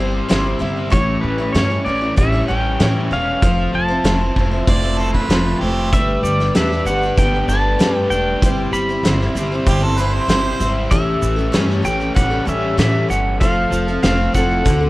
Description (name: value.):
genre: folk rock and heartland rock.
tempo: 96 BPM.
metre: 4/4.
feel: straight.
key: unclear.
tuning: A4 = 440 Hz.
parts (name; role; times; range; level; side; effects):
pedal steel guitar; melody; 0.0-14.9 s; B4 to B5; -22 LUFS; equal; tape echo.
picked twelve-string acoustic guitar; accompaniment; 0.0-14.9 s; A2 to C#5; -22 LUFS; left 2 dB; none.
overdriven electric guitar; riff; 0.0-14.9 s; A2 to E4; -24 LUFS; equal; none.
upright bass; bass; 0.0-14.9 s; E1 to A2; -21 LUFS; equal; none.
loose indie drum kit; drums; 0.3-14.8 s; hi-hat, kick drum, snare drum; -18 LUFS; equal; none.
bright harmonica; second line; 4.7-5.9, 9.7-10.7 s; G4 to D5; -23 LUFS; right 3 dB; tape echo.
egg shaker; percussion; 5.9-14.8 s; none; -38 LUFS; right 4 dB; none.
room: small room ambience.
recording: worn, warbling old tape, cassette tape, warbly pitch drift.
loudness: -15 LUFS.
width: side -19 dB against mid.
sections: 0.0-14.9 A section.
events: none.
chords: 0.0 C/G; 0.9 A7; 3.4 Fmaj7; 5.9 Gadd9; 8.4 C/G; 10.9 A7; 13.4 Fmaj7.